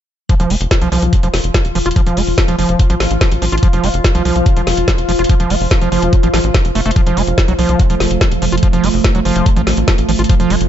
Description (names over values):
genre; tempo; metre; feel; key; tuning
psychedelic trance; 144 BPM; 4/4; straight; F major; A4 = 440 Hz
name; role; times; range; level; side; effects
evolving wavetable pad; sustained chords; 1.0-10.7 s; F3 to F4; -19 LUFS; right 1 dB; chorus, built-in reverb, sidechain pumping
overdriven acid bass; riff; 0.3-10.6 s; F3 to F4; -19 LUFS; moving between left 1 dB and right 5 dB; auto-pan, vintage 12-bit sampler grit, sidechain pumping, tape echo
drum and bass drum kit; drums; 0.3-10.7 s; hi-hat, snare drum; -20 LUFS; left 1 dB; none
electronic kick drum; drums; 0.3-10.4 s; none; -12 LUFS; equal; none
tight sequencer bass; bass; 0.4-10.7 s; F1 to C2; -17 LUFS; equal; none
room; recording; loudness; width
little or no reverb; nothing above 7.8 kHz; -11 LUFS; side -10 dB against mid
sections
0.3-10.7 A section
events
none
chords
0.3 F5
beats
| 0.29 0.71 1.13 1.54 | 1.96 2.38 2.79 3.21 | 3.63 4.04 4.46 4.88 | 5.29 5.71 6.13 6.54 | 6.96 7.38 7.79 8.21 | 8.63 9.04 9.46 9.88 | 10.29